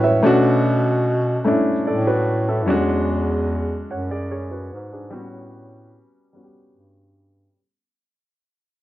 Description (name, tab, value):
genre	slow six-eight R&B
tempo	49 BPM (dotted quarters)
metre	6/8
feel	straight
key	unclear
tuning	A4 = 440 Hz
part	warm baby grand piano	accompaniment	0.0-7.6 s	F#3 to F#5	-20 LUFS	equal	none
part	breathy bass clarinet	bass	0.0-7.5 s	E2 to B2	-22 LUFS	right 1 dB	none
room	light reverb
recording	dry, close 1970s-style studio recording, low-pass filter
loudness	-17 LUFS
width	side -14 dB against mid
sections	0.0-7.6 A section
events	fade-out 0.0-7.6; filter sweep 0.0-7.6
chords	0.2 Bm9; 2.7 E13; 5.1 A13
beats	| 0.22 1.44 | 2.67 3.89 | 5.12 6.34